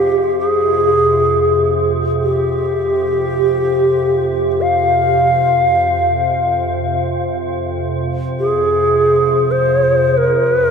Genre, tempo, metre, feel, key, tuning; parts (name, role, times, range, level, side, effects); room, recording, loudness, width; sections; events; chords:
world meditative, free-time meditation music; free time; F minor; A4 = 440 Hz
hollow Native American-style cedar flute; melody; 0.0-10.7 s; G4 to F5; -14 LUFS; left 1 dB; ping-pong delay
icy glass pad; drone; 0.0-10.7 s; F2 to C3; -20 LUFS; right 2 dB; chorus, built-in reverb
wet huge ambient reverb, RT60 7.4 s; -13 LUFS; side -6 dB against mid
0.0-10.7 A section